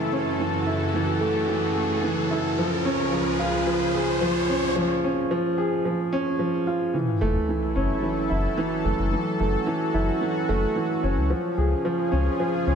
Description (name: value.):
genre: piano and strings electronica.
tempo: 110 BPM.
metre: 4/4.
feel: straight.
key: F# minor.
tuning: A4 = 437 Hz.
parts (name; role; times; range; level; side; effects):
lush unison pad; sustained chords; 0.0-12.8 s; C#2 to A4; -28 LUFS; equal; chorus.
dark upright piano; riff; 0.0-12.8 s; E3 to G#4; -24 LUFS; right 1 dB; ping-pong delay.
riser and sub drop; sound effects; 0.0-9.1 s; none; -30 LUFS; equal; none.
round analog bass; bass; 7.2-12.8 s; F#1 to C#2; -24 LUFS; left 1 dB; none.
room: wet recital hall reverb, RT60 1.4 s.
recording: none.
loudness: -22 LUFS.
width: side -7 dB against mid.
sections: 0.0-6.9 A section; 6.9-12.8 B section.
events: build-up 0.0-6.9; riser 0.0-4.8; drop 6.9-12.8; impact 6.9-9.1.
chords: 0.0 F#m7; 2.6 C#; 6.9 F#m7; 11.3 C#.